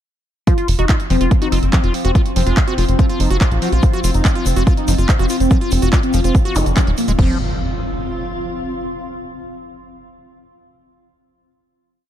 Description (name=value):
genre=psychedelic trance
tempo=143 BPM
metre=4/4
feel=straight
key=unclear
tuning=A4 = 439 Hz
part: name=wide unison lead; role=melody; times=0.5-7.3 s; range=Bb3 to Gb4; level=-23 LUFS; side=equal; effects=phaser, sidechain pumping, dub echo
part: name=pulsing gated texture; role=sustained chords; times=1.0-7.2 s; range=F3 to C4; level=-28 LUFS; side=left 1 dB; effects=chorus, built-in reverb, sidechain pumping
part: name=liquid acid bass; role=riff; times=0.5-7.4 s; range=F3 to Gb4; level=-25 LUFS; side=equal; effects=chorus, auto-pan, sidechain pumping, tape echo
part: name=electronic kick drum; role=drums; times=0.5-7.3 s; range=none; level=-14 LUFS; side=equal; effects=none
part: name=techno drum kit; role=drums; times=0.5-7.3 s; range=crash cymbal, handclaps, hi-hat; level=-26 LUFS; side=right 1 dB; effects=none
part: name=granular cloud pad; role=texture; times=1.5-8.8 s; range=C4 to C6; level=-26 LUFS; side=left 1 dB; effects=built-in reverb, sidechain pumping
part: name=tight sequencer bass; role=bass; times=0.7-7.4 s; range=Eb1 to Bb1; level=-16 LUFS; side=equal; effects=tube saturation
part: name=metallic wobble bass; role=second line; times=1.5-3.6 s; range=F3 to C4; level=-35 LUFS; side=right 2 dB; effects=none
part: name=egg shaker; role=percussion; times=3.8-7.2 s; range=none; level=-32 LUFS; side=left 5 dB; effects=none
part: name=zap and impact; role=sound effects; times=6.6-8.9 s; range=none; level=-26 LUFS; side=equal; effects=none
room=little or no reverb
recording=dark, warm production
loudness=-14 LUFS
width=side -11 dB against mid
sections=0.5-7.2 groove; 7.2-8.9 final chord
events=none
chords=0.5 F5